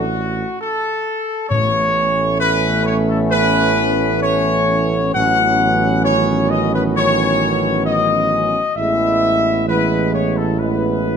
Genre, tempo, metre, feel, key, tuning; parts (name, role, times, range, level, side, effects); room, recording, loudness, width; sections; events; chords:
classical, ceremonial fanfare; 66 BPM; 4/4; straight; A major; A4 = 439 Hz
clear trumpet section; melody; 0.0-11.2 s; F#4 to F#5; -17 LUFS; left 1 dB
mellow trombone section; sustained chords; 0.0-11.2 s; D#3 to A3; -23 LUFS; right 4 dB
warm French horn section; sustained chords; 0.0-11.2 s; B3 to E4; -24 LUFS; left 5 dB
mellow tuba; bass; 0.0-11.2 s; A1; -20 LUFS; right 3 dB
timpani; percussion; 1.5-2.8 s; A2; -23 LUFS; left 2 dB
moderate scoring stage reverb, RT60 1.5 s; -14 LUFS; side -7 dB against mid
0.0-11.2 A section
0.0 D/A (rootless); 1.5 Aadd9; 5.2 Badd9/A; 8.8 E/A